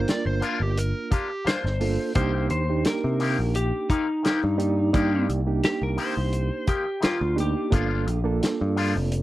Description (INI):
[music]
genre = straight-eighth soul blues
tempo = 86 BPM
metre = 4/4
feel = straight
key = unclear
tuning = A4 = 440 Hz
[part]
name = overdriven slide guitar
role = second line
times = 0.0-1.5 s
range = G4 to D5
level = -31 LUFS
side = right 2 dB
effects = none
[part]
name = reed electric piano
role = accompaniment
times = 0.0-9.2 s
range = Bb3 to D5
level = -28 LUFS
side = right 5 dB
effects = overdrive, fast tremolo
[part]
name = picked electric bass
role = bass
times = 0.0-9.2 s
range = F1 to C3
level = -25 LUFS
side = equal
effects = none
[part]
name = electric guitar with an envelope filter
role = stabs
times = 0.1-9.0 s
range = Eb3 to G4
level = -30 LUFS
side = left 5 dB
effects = none
[part]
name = warm soul drum kit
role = drums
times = 0.1-9.2 s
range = hi-hat, kick drum, snare drum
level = -26 LUFS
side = equal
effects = none
[part]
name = clean lap steel guitar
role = melody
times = 1.5-7.7 s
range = Eb4 to C5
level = -28 LUFS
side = left 1 dB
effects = none
[sound]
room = little or no reverb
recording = dry, close 1970s-style studio recording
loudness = -22 LUFS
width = side -16 dB against mid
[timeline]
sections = 0.0-9.2 A section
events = none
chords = 0.0 Gm7; 2.2 Cm7; 7.7 Gm7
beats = 0.07 0.77 1.46 | 2.16 2.85 3.55 4.24 | 4.94 5.64 6.33 7.03 | 7.72 8.42 9.12